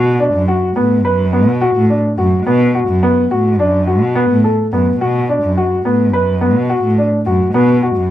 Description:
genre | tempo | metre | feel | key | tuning
contemporary instrumental, chamber music in an uneven meter | 212 BPM (eighths) | 9/8 | straight | B minor | A4 = 438 Hz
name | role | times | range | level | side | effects
clear baby grand piano | arpeggios | 0.0-8.0 s | B3 to B4 | -14 LUFS | left 1 dB | none
warm cello | bass | 0.0-8.1 s | F#2 to B2 | -15 LUFS | right 1 dB | none
room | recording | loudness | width
light reverb | none | -11 LUFS | side -12 dB against mid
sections
0.0-8.1 A section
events
none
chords
0.0 Bm7

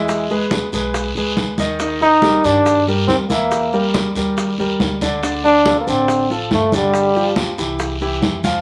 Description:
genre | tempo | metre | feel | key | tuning
Afro-Cuban jazz | 140 BPM | 4/4 | straight | unclear | A4 = 441 Hz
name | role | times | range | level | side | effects
bright trombone | melody | 0.0-7.4 s | G3 to Eb4 | -17 LUFS | equal | none
clear concert grand piano | accompaniment | 0.0-8.6 s | D3 to F5 | -23 LUFS | equal | none
upright bass | bass | 0.0-8.6 s | G1 to G2 | -31 LUFS | equal | none
bongos | percussion | 0.1-8.6 s | none | -29 LUFS | equal | none
congas | percussion | 0.1-8.6 s | none | -25 LUFS | equal | none
guiro | percussion | 0.1-8.6 s | none | -29 LUFS | equal | none
maracas | percussion | 0.1-8.6 s | none | -39 LUFS | equal | none
room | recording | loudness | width
moderate studio ambience, RT60 0.5 s | none | -17 LUFS | mono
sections
0.0-8.6 A section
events
none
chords
0.1 E; 1.8 Ebmaj7; 3.5 Edim; 4.4 Eb; 5.2 Dm7; 6.9 G5; 7.8 C

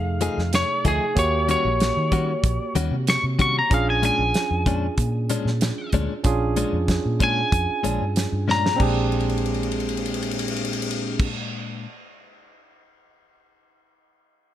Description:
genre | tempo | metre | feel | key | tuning
straight-eighth soul blues | 94 BPM | 4/4 | straight | Bb mixolydian | A4 = 441 Hz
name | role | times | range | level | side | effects
lightly driven lead guitar | melody | 0.0-8.8 s | G#4 to Db6 | -23 LUFS | left 1 dB | none
barky tine electric piano | accompaniment | 0.0-11.3 s | C3 to Db5 | -28 LUFS | right 5 dB | none
vintage muted fingered electric bass | bass | 0.0-11.3 s | Bb1 to Eb3 | -25 LUFS | equal | none
direct-recorded clean electric guitar | stabs | 0.2-11.9 s | Bb2 to G#4 | -28 LUFS | left 6 dB | none
damped 70s drum kit | drums | 0.2-12.8 s | crash cymbal, hi-hat, kick drum, ride cymbal, snare drum | -25 LUFS | equal | none
room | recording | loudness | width
light reverb, studio reverb | none | -20 LUFS | side -12 dB against mid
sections
0.0-8.8 A section; 8.8-11.3 B section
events
lead electric guitar solo 0.0-8.8; drum fill 8.5-8.8, 9.1-11.2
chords
0.0 F7#9; 1.2 Eb7#9; 3.7 Bb7#9; 8.8 Bb13

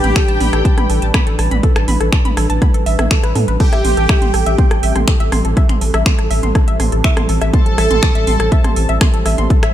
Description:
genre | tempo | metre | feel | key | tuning
melodic techno | 122 BPM | 4/4 | straight | A minor | A4 = 440 Hz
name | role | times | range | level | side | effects
soft supersaw | melody | 0.0-8.9 s | G4 to A4 | -22 LUFS | right 1 dB | cassette tape, sidechain pumping, dub echo
big bright polysynth | second line | 0.0-8.9 s | G5 to A5 | -25 LUFS | equal | wide subtle chorus, sidechain pumping, ping-pong delay
dark analog pad | sustained chords | 0.0-9.7 s | G3 to B4 | -24 LUFS | right 2 dB | chorus, sidechain pumping
tight sequenced synth | arpeggios | 0.0-9.7 s | A4 to C6 | -23 LUFS | equal | chorus, sidechain pumping, ping-pong delay
round analog bass | bass | 0.0-9.7 s | A1 to A2 | -17 LUFS | equal | sidechain pumping
swarming drone | drone | 0.1-9.7 s | A2 to E3 | -30 LUFS | left 2 dB | none
house drum kit | drums | 0.0-9.7 s | crash cymbal, finger snaps, hi-hat, rim click, toms | -20 LUFS | right 1 dB | studio reverb
electronic kick drum | drums | 0.2-9.6 s | none | -13 LUFS | equal | studio reverb
room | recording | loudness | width
little or no reverb | dark, warm production | -12 LUFS | side -12 dB against mid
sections
0.0-9.7 A section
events
none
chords
0.0 G/A; 3.6 Am7

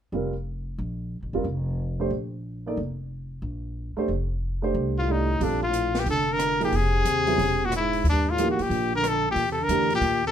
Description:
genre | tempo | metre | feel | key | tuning
jazz, small-group swing and bop | 182 BPM | 4/4 | swing 64% on 8ths | Bb major | A4 = 440 Hz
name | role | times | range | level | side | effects
dark baby grand piano | accompaniment | 0.1-9.9 s | E3 to D5 | -28 LUFS | right 3 dB | none
upright bass | bass | 0.1-10.3 s | E1 to E2 | -29 LUFS | equal | none
brilliant trumpet | melody | 5.0-10.3 s | D4 to Bb4 | -24 LUFS | left 3 dB | none
breathy trombone | second line | 5.0-10.3 s | F2 to D3 | -29 LUFS | right 2 dB | none
open jazz drum kit | drums | 5.4-10.1 s | hi-hat, kick drum, rim click, snare drum | -35 LUFS | equal | none
room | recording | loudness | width
light reverb | minimal, uncompressed stereo recording | -23 LUFS | side -9 dB against mid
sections
0.1-5.4 A section; 5.4-10.3 B section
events
none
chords
0.1 Bbsus2; 4.1 F7; 5.4 Bbmaj7; 6.7 Fm7; 7.4 E; 8.0 Eb; 9.4 Em7b5

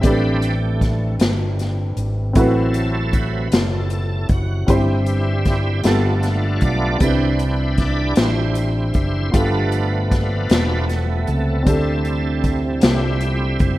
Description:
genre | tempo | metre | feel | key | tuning
slow gospel | 52 BPM (dotted quarters) | 6/8 | straight | C major | A4 = 443 Hz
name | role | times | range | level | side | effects
warm upright piano | accompaniment | 0.0-13.8 s | G2 to C5 | -23 LUFS | equal | none
bright tonewheel organ | sustained chords | 0.0-13.8 s | C3 to D5 | -24 LUFS | right 2 dB | fast rotary speaker, overdrive, chorus vibrato
mellow French horn section | sustained chords | 0.0-13.8 s | C3 to B4 | -30 LUFS | equal | none
fingered electric bass | bass | 0.0-13.8 s | E1 to D2 | -20 LUFS | equal | none
swinging big-band drum kit | drums | 0.0-13.8 s | hi-hat, kick drum, snare drum | -20 LUFS | equal | none
room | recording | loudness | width
light reverb | rough home demo mix | -16 LUFS | side -16 dB against mid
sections
0.0-13.8 A section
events
tonewheel organ solo 0.0-13.8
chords
0.0 Am11; 2.4 Am69; 4.7 C/G; 5.8 G9; 7.0 Cmaj9; 9.3 G9; 11.7 D7sus4

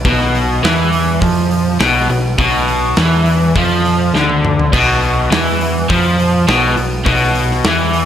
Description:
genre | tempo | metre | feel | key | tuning
blues rock power trio and southern rock | 103 BPM | 4/4 | straight | unclear | A4 = 440 Hz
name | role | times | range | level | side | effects
growling picked electric bass | bass | 0.0-8.1 s | B1 to F2 | -19 LUFS | equal | overdrive
crunchy overdriven guitar | riff | 0.1-8.1 s | B2 to F3 | -13 LUFS | equal | spring reverb
big rock drum kit | drums | 0.1-8.1 s | crash cymbal, hi-hat, kick drum, snare drum, toms | -19 LUFS | equal | none
room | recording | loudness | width
light reverb, studio reverb | none | -11 LUFS | side -10 dB against mid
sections
0.0-8.1 A section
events
drum fill 4.1-4.7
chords
0.0 Bdim

